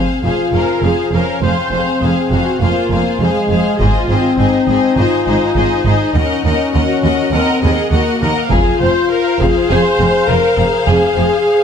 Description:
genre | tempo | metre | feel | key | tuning
cinematic, epic orchestral film score | 102 BPM | 4/4 | straight | F phrygian | A4 = 439 Hz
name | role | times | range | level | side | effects
warm symphonic violin section | melody | 0.0-11.6 s | Eb5 to Gb5 | -24 LUFS | left 5 dB | none
rich symphonic violin section | second line | 0.0-11.6 s | C4 to Eb5 | -20 LUFS | left 4 dB | none
mellow French horn section | sustained chords | 0.0-11.6 s | Ab3 to Bb4 | -16 LUFS | left 4 dB | none
rich symphonic cello section | bass | 0.0-11.3 s | Eb2 to Ab2 | -19 LUFS | right 3 dB | none
warm symphonic viola section | accompaniment | 0.2-11.6 s | Eb4 to C5 | -20 LUFS | right 2 dB | none
clear symphonic double bass section | bass | 0.2-11.2 s | F1 to Eb2 | -19 LUFS | right 3 dB | none
taiko ensemble | drums | 3.8-4.9, 8.5-9.7 s | none | -19 LUFS | equal | none
room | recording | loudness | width
moderate scoring stage reverb, RT60 1.7 s | none | -12 LUFS | side -7 dB against mid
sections
0.0-11.6 A section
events
none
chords
0.0 Fm; 3.8 Ab; 6.2 Ebm; 8.5 Fm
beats
0.24 0.83 | 1.43 2.02 2.61 3.20 | 3.79 4.38 4.98 5.57 | 6.15 6.74 7.33 7.92 | 8.52 9.11 9.70 10.29 | 10.88 11.47

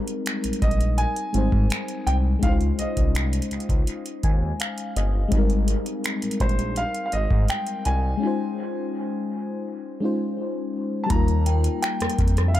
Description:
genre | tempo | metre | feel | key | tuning
contemporary R&B | 83 BPM | 4/4 | straight | Ab major | A4 = 440 Hz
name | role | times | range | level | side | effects
mellow FM electric piano | accompaniment | 0.0-12.6 s | G3 to Ab5 | -27 LUFS | left 3 dB | chorus, dub echo
booming analog drum machine | drums | 0.1-12.6 s | finger snaps, hi-hat, kick drum, rim click | -24 LUFS | equal | overdrive
smooth synth bass | bass | 0.4-12.6 s | G1 to Ab2 | -23 LUFS | equal | none
warm baby grand piano | melody | 0.6-12.6 s | C5 to Bb5 | -30 LUFS | right 1 dB | dub echo
synth chime | texture | 11.5-12.6 s | G5 | -38 LUFS | left 4 dB | ensemble chorus, phaser, dub echo
room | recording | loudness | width
digital ambience | echo-heavy mix | -21 LUFS | side -13 dB against mid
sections
0.0-11.1 A section; 11.1-12.6 B section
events
FM electric piano fill 3.9-5.3; break 8.2-11.1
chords
0.0 Abmaj9; 2.4 Dbmaj9; 5.3 Abmaj9; 8.2 Dbmaj9; 11.1 Ebadd9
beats
0.26 0.98 1.71 | 2.43 3.15 3.87 4.60 | 5.32 6.04 6.76 7.49 | 8.21 8.93 9.66 10.38 | 11.10 11.83 12.55

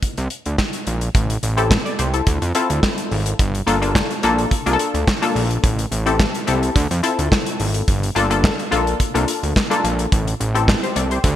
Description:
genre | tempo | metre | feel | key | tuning
early-eighties boogie funk | 107 BPM | 4/4 | straight | G dorian | A4 = 439 Hz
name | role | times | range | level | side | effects
modern studio drum kit | drums | 0.0-11.4 s | handclaps, hi-hat, kick drum, snare drum | -20 LUFS | equal | gated reverb
fat analog bass | bass | 0.2-11.4 s | G1 to F2 | -20 LUFS | right 1 dB | none
funky polysynth comp | accompaniment | 1.6-11.4 s | Bb3 to D5 | -20 LUFS | left 3 dB | chorus
room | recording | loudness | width
light reverb, small room ambience | bright 1980s-style digital production | -16 LUFS | side -12 dB against mid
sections
0.0-1.1 A section; 1.1-11.4 B section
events
none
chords
0.0 Gm (rootless); 1.1 Am7; 2.3 Dm7; 3.4 Gm7; 5.6 Am7; 6.8 Dm7; 7.9 Gm7; 10.1 Am7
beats
0.03 0.59 | 1.15 1.71 2.27 2.83 | 3.39 3.95 4.51 5.08 | 5.64 6.20 6.76 7.32 | 7.88 8.44 9.00 9.56 | 10.12 10.68 11.24

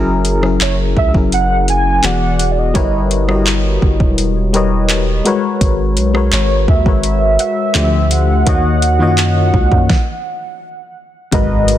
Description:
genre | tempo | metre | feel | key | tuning
contemporary R&B | 84 BPM | 4/4 | straight | unclear | A4 = 435 Hz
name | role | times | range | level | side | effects
FM electric piano with tremolo | accompaniment | 0.0-11.8 s | G#2 to E5 | -16 LUFS | left 4 dB | none
long sustained 808-style bass | bass | 0.0-11.8 s | E1 to F#2 | -16 LUFS | right 1 dB | none
smooth R&B drum kit | drums | 0.2-11.8 s | handclaps, hi-hat, kick drum, rim click, snare drum | -16 LUFS | equal | vintage 12-bit sampler grit, soft clipping on snare
warm velvety synth lead | melody | 0.6-11.8 s | C#5 to G#5 | -18 LUFS | right 2 dB | chorus
soft round pluck | texture | 0.6-8.1 s | C#5 to F#5 | -33 LUFS | right 6 dB | none
impact | sound effects | 11.3-11.8 s | none | -23 LUFS | right 5 dB | none
room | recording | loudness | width
digital ambience | dense, heavily limited modern master | -11 LUFS | side -12 dB against mid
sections
0.0-11.3 A section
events
stop 9.9-11.3; impact 11.3-11.8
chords
0.0 F#9; 2.0 E9; 2.8 D#7b9b13/G; 5.3 G#m11; 7.8 Dm11; 8.5 D#m7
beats
0.61 1.32 2.04 | 2.75 3.47 4.18 4.90 | 5.61 6.33 7.04 7.75 | 8.47 9.18 9.90 10.61 | 11.32

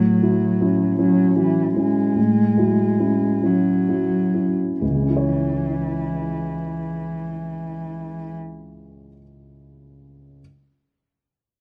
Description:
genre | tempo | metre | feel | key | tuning
neoclassical piano and strings | 42-53 BPM (dotted quarters) | 6/8 | rubato | C# minor | A4 = 440 Hz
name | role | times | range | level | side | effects
dark cello | second line | 0.0-8.4 s | E3 to G#3 | -24 LUFS | equal | none
dark grand piano | accompaniment | 0.0-10.4 s | C#2 to C#5 | -23 LUFS | equal | none
room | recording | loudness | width
wet studio reverb, RT60 0.5 s | rough home demo mix | -20 LUFS | mono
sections
0.0-4.8 A section; 4.8-7.6 B section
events
slowing down 0.0-4.8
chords
0.0 A6; 4.8 C#m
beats
0.98 | 2.17 3.44 | 4.81 6.20

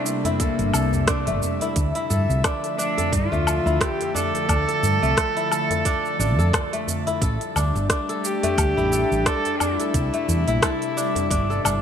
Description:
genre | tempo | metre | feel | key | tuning
organic downtempo | 88 BPM | 4/4 | swing 56% on 16ths | D minor | A4 = 440 Hz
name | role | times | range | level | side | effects
dark cello | melody | 0.0-11.8 s | Bb3 to A4 | -26 LUFS | right 1 dB | digital delay, shimmer reverb
airy breathy pad | sustained chords | 0.0-11.8 s | C3 to E5 | -28 LUFS | left 2 dB | chorus, sidechain pumping, shimmer reverb
kora | arpeggios | 0.0-11.8 s | A3 to A4 | -27 LUFS | left 1 dB | digital delay, shimmer reverb
organic electronic drum kit | drums | 0.1-11.8 s | cabasa, hi-hat, rim click, woodblock | -26 LUFS | equal | none
djembe | percussion | 0.2-11.8 s | none | -32 LUFS | equal | none
electronic kick drum | drums | 0.4-11.5 s | none | -25 LUFS | equal | none
woody fretless electric bass | bass | 0.6-11.8 s | G1 to G2 | -23 LUFS | equal | sidechain pumping
room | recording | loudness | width
moderate plate reverb, RT60 2.5 s | bright 1980s-style digital production | -19 LUFS | side -8 dB against mid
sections
0.0-11.8 A section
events
none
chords
0.0 C7; 1.8 Dmadd9; 7.2 A7sus4; 9.9 C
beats
0.40 1.08 | 1.76 2.44 3.12 3.81 | 4.49 5.17 5.85 6.53 | 7.21 7.90 8.58 9.26 | 9.94 10.62 11.31

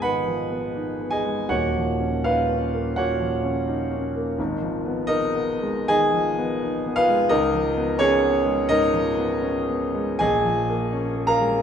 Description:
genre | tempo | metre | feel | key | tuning
classical, impressionist solo piano | 83 BPM | 4/4 | uneven beats, rubato | G# dorian | A4 = 439 Hz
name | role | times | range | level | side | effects
warm concert grand piano | solo | 0.0-11.6 s | D#1 to B5 | -20 LUFS | equal | none
room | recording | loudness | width
wet scoring stage reverb, RT60 1.4 s | minimal, uncompressed stereo recording | -20 LUFS | side -8 dB against mid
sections
0.0-11.6 A section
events
none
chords
0.0 G#m6; 1.5 D#m9; 4.4 G#m6; 7.3 C#9; 10.2 Bbm7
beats
0.04 0.75 | 1.51 2.27 2.98 3.67 | 4.38 5.08 5.89 6.62 | 7.31 8.00 8.69 9.42 | 10.22 10.93

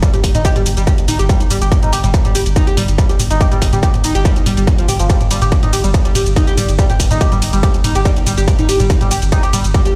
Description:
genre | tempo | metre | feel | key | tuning
driving peak-time techno | 142 BPM | 4/4 | straight | unclear | A4 = 439 Hz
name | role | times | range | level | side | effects
overdriven synth lead | riff | 0.0-9.9 s | F3 to G4 | -21 LUFS | equal | distortion, phaser, tube saturation, subtle chorus, cassette tape, sidechain pumping, digital delay
saturated sub bass | bass | 0.0-9.7 s | G1 | -20 LUFS | equal | tube saturation, sidechain pumping, low-pass filter
electronic kick drum | drums | 0.0-9.8 s | none | -16 LUFS | equal | distortion, overdrive
techno drum kit | drums | 0.0-9.9 s | hi-hat, ride cymbal, shaker, toms | -22 LUFS | equal | overdrive
room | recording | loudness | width
little or no reverb | played on a big sound system in a bare room, stone room reverb | -14 LUFS | mono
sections
0.0-10.0 A section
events
none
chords
0.0 G5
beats
| 0.03 0.45 0.87 1.29 | 1.72 2.14 2.56 2.98 | 3.41 3.83 4.25 4.67 | 5.10 5.52 5.94 6.36 | 6.79 7.21 7.63 8.05 | 8.48 8.90 9.32 9.74

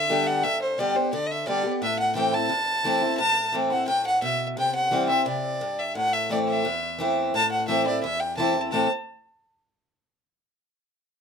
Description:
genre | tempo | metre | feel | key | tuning
bluegrass | 174 BPM | 4/4 | straight | A dorian | A4 = 445 Hz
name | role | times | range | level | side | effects
dark fiddle | melody | 0.0-8.9 s | C5 to A5 | -24 LUFS | equal | none
picked acoustic archtop guitar | accompaniment | 0.0-8.9 s | E2 to G4 | -25 LUFS | left 1 dB | none
room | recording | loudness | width
light reverb | close, detailed microphones | -22 LUFS | side -6 dB against mid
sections
0.0-7.3 A section; 7.3-8.7 B section; 8.7-10.1 C section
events
none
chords
0.0 G; 1.8 Am; 4.6 C; 6.0 Am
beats
0.10 | 0.44 0.79 1.13 1.47 | 1.82 2.16 2.51 2.85 | 3.19 3.54 3.88 4.23 | 4.57 4.92 5.26 5.61 | 5.95 6.30 6.64 6.99 | 7.33 7.68 8.03 8.37 | 8.72

